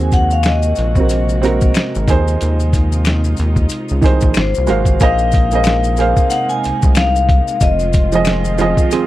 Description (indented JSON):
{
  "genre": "R&B, neo-soul",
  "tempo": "92 BPM",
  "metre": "4/4",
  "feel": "swing 59% on 16ths",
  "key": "unclear",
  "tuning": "A4 = 441 Hz",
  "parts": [
    { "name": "vibraphone with medium hard mallets", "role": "melody", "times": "0.0-8.9 s", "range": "C5 to Ab5", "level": "-20 LUFS", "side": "left 4 dB", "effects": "none" },
    { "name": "warm baby grand piano", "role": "accompaniment", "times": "0.0-9.1 s", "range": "Eb3 to F5", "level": "-19 LUFS", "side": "right 6 dB", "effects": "none" },
    { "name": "warm studio string section", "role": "sustained chords", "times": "0.0-9.1 s", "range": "C3 to Gb4", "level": "-25 LUFS", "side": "equal", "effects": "none" },
    { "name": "rubbery square bass", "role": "bass", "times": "0.0-8.7 s", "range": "F1 to Eb2", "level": "-16 LUFS", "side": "equal", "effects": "none" },
    { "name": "boom bap sampler-style drum kit", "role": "drums", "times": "0.1-9.1 s", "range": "hi-hat, kick drum, snare drum", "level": "-15 LUFS", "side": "equal", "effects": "none" },
    { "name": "maracas and finger snaps", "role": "percussion", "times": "0.1-9.1 s", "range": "none", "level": "-28 LUFS", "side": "left 10 dB", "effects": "none" },
    { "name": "hollow-body jazz guitar", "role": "second line", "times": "8.9-9.1 s", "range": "C4 to Ab4", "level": "-15 LUFS", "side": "right 8 dB", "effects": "none" }
  ],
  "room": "little or no reverb",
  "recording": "dry, close 1970s-style studio recording",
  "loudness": "-12 LUFS",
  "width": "side -15 dB against mid",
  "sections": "0.0-5.0 A section; 5.0-9.1 B section",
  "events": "none",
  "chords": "0.0 Ab9; 2.1 Fm7/Eb; 4.4 Ab13; 5.0 Bb9sus4; 7.6 Fm7",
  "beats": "0.44 1.09 1.75 | 2.40 3.05 3.70 4.36 | 5.01 5.66 6.31 6.96 | 7.62 8.27 8.92"
}